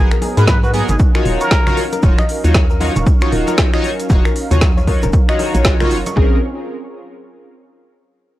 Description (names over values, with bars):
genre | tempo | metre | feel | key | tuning
deep house | 116 BPM | 4/4 | swing 60% on 16ths | Bb phrygian | A4 = 439 Hz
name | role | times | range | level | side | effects
trumpet with plunger mute | melody | 0.0-1.8 s | Gb4 to Cb5 | -23 LUFS | equal | tape echo
warm analog pad | sustained chords | 0.0-6.4 s | Gb3 to F5 | -27 LUFS | right 1 dB | chorus, vintage 12-bit sampler grit, sidechain pumping
chorused polysynth | stabs | 0.0-6.4 s | Cb4 to Db5 | -21 LUFS | equal | phaser, sidechain pumping, tape echo
hollow knocking FM bass | bass | 0.0-6.4 s | Eb1 to Ab2 | -17 LUFS | equal | sidechain pumping
soft round pluck | arpeggios | 0.1-6.4 s | Ab4 to Db6 | -26 LUFS | left 4 dB | chorus, sidechain pumping, tape echo
deep house drum kit | drums | 0.1-6.1 s | finger snaps, hi-hat, snare drum | -22 LUFS | equal | none
tube shaker | percussion | 0.1-6.1 s | none | -38 LUFS | right 3 dB | none
congas | percussion | 0.2-6.1 s | none | -26 LUFS | right 2 dB | none
electronic kick drum | drums | 0.5-6.3 s | none | -14 LUFS | equal | overdrive
room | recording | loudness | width
digital ambience | dry, gritty hardware recording, cassette tape | -12 LUFS | side -15 dB against mid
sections
0.0-6.2 A section; 6.2-8.2 B section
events
drop 0.0-6.2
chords
0.0 Abm9; 1.0 Ebm9; 6.2 Bbm9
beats
0.48 0.99 1.51 | 2.03 2.55 3.06 3.58 | 4.10 4.62 5.13 5.65 | 6.17